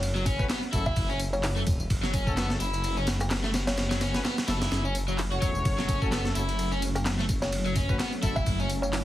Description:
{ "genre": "breakbeat, breaks", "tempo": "128 BPM", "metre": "4/4", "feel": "swing 57% on 16ths", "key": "F# minor", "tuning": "A4 = 440 Hz", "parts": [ { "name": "kalimba", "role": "melody", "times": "0.0-3.9, 7.0-9.0 s", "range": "A4 to E5", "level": "-35 LUFS", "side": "equal", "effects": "telephone sound, vintage 12-bit sampler grit, dub echo" }, { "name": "detuned saw bass", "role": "bass", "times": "0.0-9.0 s", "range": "E1 to F#1", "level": "-30 LUFS", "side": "equal", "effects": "none" }, { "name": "breakbeat sampler-style drum kit", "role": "drums", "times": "0.0-9.0 s", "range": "kick drum, ride cymbal, snare drum", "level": "-29 LUFS", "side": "equal", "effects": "overdrive" }, { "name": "garage drum kit", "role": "drums", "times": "0.0-9.0 s", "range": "handclaps, hi-hat, tambourine", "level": "-38 LUFS", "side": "left 1 dB", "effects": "none" }, { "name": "crunchy overdriven guitar", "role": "riff", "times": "0.2-8.7 s", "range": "F#3 to F#4", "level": "-32 LUFS", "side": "left 1 dB", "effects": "dub echo" }, { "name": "clear brass ensemble", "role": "stabs", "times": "0.4-8.3 s", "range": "A3 to C#5", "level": "-36 LUFS", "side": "left 2 dB", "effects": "dub echo" }, { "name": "phased analog pad", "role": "sustained chords", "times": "5.6-9.0 s", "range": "F#3 to C#4", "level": "-35 LUFS", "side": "equal", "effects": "phaser, chorus, vintage 12-bit sampler grit, sidechain pumping" } ], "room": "light reverb", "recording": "heavily compressed radio sound, multiband compression, vinyl crackle", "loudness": "-25 LUFS", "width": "side -14 dB against mid", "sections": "0.0-9.0 A section", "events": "none", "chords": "0.0 F#m" }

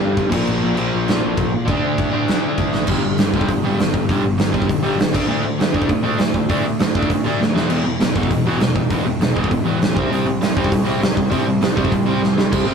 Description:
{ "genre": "punk rock", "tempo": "199 BPM", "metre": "4/4", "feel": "straight", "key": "unclear", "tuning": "A4 = 442 Hz", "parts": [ { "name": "overdriven semi-hollow guitar", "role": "riff", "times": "0.0-12.7 s", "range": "E2 to D4", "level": "-19 LUFS", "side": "equal", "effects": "none" }, { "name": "fuzz picked electric bass", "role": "bass", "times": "0.0-12.7 s", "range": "E1 to D3", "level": "-26 LUFS", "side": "equal", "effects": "overdrive" }, { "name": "big rock drum kit", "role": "drums", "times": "0.2-12.6 s", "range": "crash cymbal, hi-hat, kick drum, snare drum", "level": "-19 LUFS", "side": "right 1 dB", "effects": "none" } ], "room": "light reverb", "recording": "rough rehearsal-room recording", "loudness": "-16 LUFS", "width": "side -6 dB against mid", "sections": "0.0-2.9 A section; 2.9-12.5 B section", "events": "half time 0.0-2.9; drum fill 2.7, 7.4-7.7, 12.2-12.5", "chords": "0.3 Bb5; 1.7 D5; 2.9 G5; 5.1 D5; 7.6 E5; 10.0 C5" }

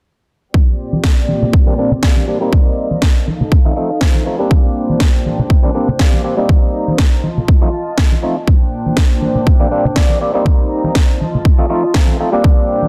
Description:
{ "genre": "filtered disco house", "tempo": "121 BPM", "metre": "4/4", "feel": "swing 54% on 16ths", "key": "Bb major", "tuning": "A4 = 440 Hz", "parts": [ { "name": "dark studio string section", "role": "sustained chords", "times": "0.5-12.9 s", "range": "Bb2 to Bb5", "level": "-24 LUFS", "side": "equal", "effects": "sidechain pumping, low-pass filter" }, { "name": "electronic kick drum", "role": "drums", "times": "0.5-12.6 s", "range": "none", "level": "-14 LUFS", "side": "equal", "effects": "studio reverb" }, { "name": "congas and tambourine", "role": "percussion", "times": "0.6-12.9 s", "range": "none", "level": "-23 LUFS", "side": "equal", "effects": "sidechain pumping on perc, low-pass filter on perc" }, { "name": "electronic snare drum", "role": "drums", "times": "1.0-12.1 s", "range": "none", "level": "-23 LUFS", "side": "equal", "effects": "studio reverb" }, { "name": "bright clav", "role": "accompaniment", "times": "1.7-12.9 s", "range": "F3 to Eb4", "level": "-20 LUFS", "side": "equal", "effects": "phaser, sidechain pumping, low-pass filter" } ], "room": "studio reverb", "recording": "dense, heavily limited modern master", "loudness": "-14 LUFS", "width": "mono", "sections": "0.5-12.9 A section", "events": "filter sweep 0.5-12.9", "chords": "0.5 Bb69; 2.5 Cm7; 3.3 F7; 4.5 Bb69; 6.5 Cm7; 7.2 F7; 8.5 Bb69; 10.5 Cm7; 11.2 F7" }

